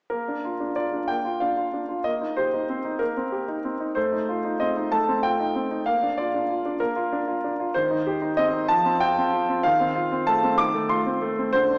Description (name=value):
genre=classical-period piano sonatina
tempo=63 BPM (dotted quarters)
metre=6/8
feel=rubato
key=Bb major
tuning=A4 = 441 Hz
part: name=clear baby grand piano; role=solo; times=0.1-11.8 s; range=D3 to D6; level=-24 LUFS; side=equal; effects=none
room=wet recital hall reverb, RT60 1.6 s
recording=heard from further back in the room, vinyl crackle, small speaker sound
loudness=-24 LUFS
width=mono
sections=0.1-11.8 A section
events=none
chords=0.1 Bb; 2.0 Cm7/Bb; 4.0 F7/A; 5.9 Bb; 7.7 Cm/Eb; 8.7 F5; 9.6 F7/Eb